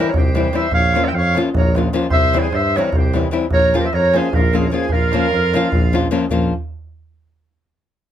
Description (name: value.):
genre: balkan folk, Balkan wedding band.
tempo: 300 BPM (eighths).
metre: 7/8.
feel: straight.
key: Bb dorian sharp4.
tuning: A4 = 440 Hz.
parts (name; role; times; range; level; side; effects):
warm clarinet; melody; 0.0-6.0 s; Ab4 to G5; -19 LUFS; right 2 dB; none.
accordion; second line; 0.0-6.0 s; F4 to E5; -26 LUFS; right 2 dB; none.
nylon-string guitar; accompaniment; 0.0-6.5 s; E3 to F4; -20 LUFS; left 4 dB; none.
darbuka; percussion; 0.0-6.5 s; none; -20 LUFS; right 1 dB; none.
mellow tuba; bass; 0.1-6.5 s; Bb1 to G2; -21 LUFS; equal; none.
room: light reverb.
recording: close, detailed microphones.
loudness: -14 LUFS.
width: side -10 dB against mid.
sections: 0.0-6.3 A section; 6.3-7.7 B section.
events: none.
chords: 0.0 C; 0.7 Bbm; 2.1 C; 3.5 Bbm.